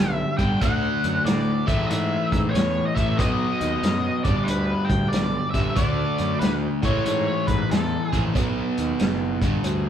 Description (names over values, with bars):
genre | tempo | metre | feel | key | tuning
blues rock power trio and southern rock | 93 BPM | 4/4 | swing 65% on 8ths | unclear | A4 = 440 Hz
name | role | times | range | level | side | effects
octave-fuzz lead guitar | melody | 0.0-8.2 s | A4 to G5 | -27 LUFS | equal | distortion
crunchy overdriven guitar | riff | 0.0-9.9 s | G2 to D4 | -24 LUFS | left 1 dB | none
fuzz picked electric bass | bass | 0.0-9.9 s | F#1 to A2 | -28 LUFS | equal | overdrive
vintage drum kit | drums | 0.4-9.8 s | hi-hat, kick drum, snare drum | -25 LUFS | equal | none
room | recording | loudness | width
wet stone room reverb, RT60 1.0 s | band playing live in one room | -20 LUFS | side -9 dB against mid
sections
0.0-9.9 A section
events
none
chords
0.0 G; 0.6 D; 1.6 A/C#; 3.2 B; 4.2 G; 5.8 D; 6.7 A/C#; 8.4 B; 9.3 G5